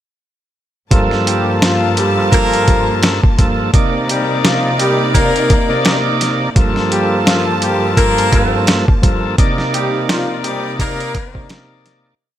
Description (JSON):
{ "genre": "hip hop, boom-bap hip-hop", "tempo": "85 BPM", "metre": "4/4", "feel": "swing 57% on 16ths", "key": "G minor", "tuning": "A4 = 440 Hz", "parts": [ { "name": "overdriven tonewheel organ", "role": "accompaniment", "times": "0.9-12.1 s", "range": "G2 to D5", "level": "-16 LUFS", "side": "right 1 dB", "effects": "slow rotary speaker, cassette tape" }, { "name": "clear studio string section", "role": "sustained chords", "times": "0.9-12.2 s", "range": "G2 to A5", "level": "-22 LUFS", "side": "left 1 dB", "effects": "none" }, { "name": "dusty soul sampler-style drum kit", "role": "drums", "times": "0.9-12.0 s", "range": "hi-hat, kick drum, snare drum", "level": "-14 LUFS", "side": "equal", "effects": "overdrive" }, { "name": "mellow horn section", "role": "stabs", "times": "1.3-11.5 s", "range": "F3 to Bb4", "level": "-19 LUFS", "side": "left 2 dB", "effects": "ping-pong delay" } ], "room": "small room ambience", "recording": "none", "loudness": "-12 LUFS", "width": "side -12 dB against mid", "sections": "0.9-12.2 hook", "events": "fade-out 9.4-12.2", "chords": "0.9 Gm9; 3.7 Cm9; 6.6 Gm9; 9.4 Cm9" }